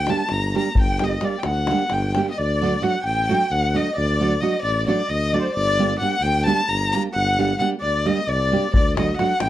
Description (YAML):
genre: balkan folk, Balkan wedding band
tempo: 263 BPM (eighths)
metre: 7/8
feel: straight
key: G harmonic minor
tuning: A4 = 440 Hz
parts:
  - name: rich violin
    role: melody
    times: 0.0-9.5 s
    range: C5 to Bb5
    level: -23 LUFS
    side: left 3 dB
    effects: plate reverb
  - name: accordion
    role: second line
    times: 0.0-9.5 s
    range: C5 to Bb5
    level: -28 LUFS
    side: right 2 dB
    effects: light tremolo tuning
  - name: mellow tuba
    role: bass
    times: 0.0-9.5 s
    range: G1 to D2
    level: -24 LUFS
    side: equal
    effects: none
  - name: nylon-string guitar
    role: accompaniment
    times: 0.1-9.3 s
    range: F#3 to G4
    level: -23 LUFS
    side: right 4 dB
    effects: none
  - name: davul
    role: percussion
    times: 0.1-2.3, 8.7-9.5 s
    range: none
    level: -22 LUFS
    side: left 1 dB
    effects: none
room: moderate studio ambience, RT60 0.5 s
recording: dark, warm production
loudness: -18 LUFS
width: side -13 dB against mid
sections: 0.0-2.4 A section; 2.4-9.5 A section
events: none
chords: 0.0 Gm; 2.4 D; 5.6 Gm; 8.7 D